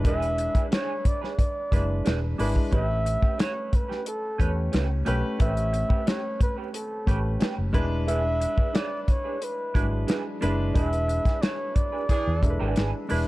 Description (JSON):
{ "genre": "lush 1970s-style soul", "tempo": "90 BPM", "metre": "4/4", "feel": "straight", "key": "unclear", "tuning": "A4 = 435 Hz", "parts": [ { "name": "warm concert grand piano", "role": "accompaniment", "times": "0.0-13.3 s", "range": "F#3 to C#5", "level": "-31 LUFS", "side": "left 1 dB", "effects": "none" }, { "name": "electric guitar through a small old amp", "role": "riff", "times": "0.0-13.2 s", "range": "C#4 to C#5", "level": "-35 LUFS", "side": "right 6 dB", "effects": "wah" }, { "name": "vintage muted fingered electric bass", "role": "bass", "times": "0.0-13.3 s", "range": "E1 to E2", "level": "-26 LUFS", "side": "equal", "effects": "none" }, { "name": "warm soul drum kit", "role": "drums", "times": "0.0-13.3 s", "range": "hi-hat, kick drum, snare drum", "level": "-25 LUFS", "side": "equal", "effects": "none" }, { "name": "breathy flugelhorn", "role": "melody", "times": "0.1-13.1 s", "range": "A4 to E5", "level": "-30 LUFS", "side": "equal", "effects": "none" }, { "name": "warm horn section", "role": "stabs", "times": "12.1-12.5 s", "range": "E3 to G#4", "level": "-33 LUFS", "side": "right 4 dB", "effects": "none" } ], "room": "small room ambience", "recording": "dark, warm production", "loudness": "-23 LUFS", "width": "side -18 dB against mid", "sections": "0.0-13.3 A section", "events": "band accent 10.8-13.3", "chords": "0.0 E7; 2.7 A9; 7.7 E7", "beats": "| 0.05 0.72 1.39 2.06 | 2.73 3.40 4.06 4.73 | 5.40 6.07 6.74 7.41 | 8.08 8.75 9.41 10.08 | 10.75 11.42 12.09 12.76" }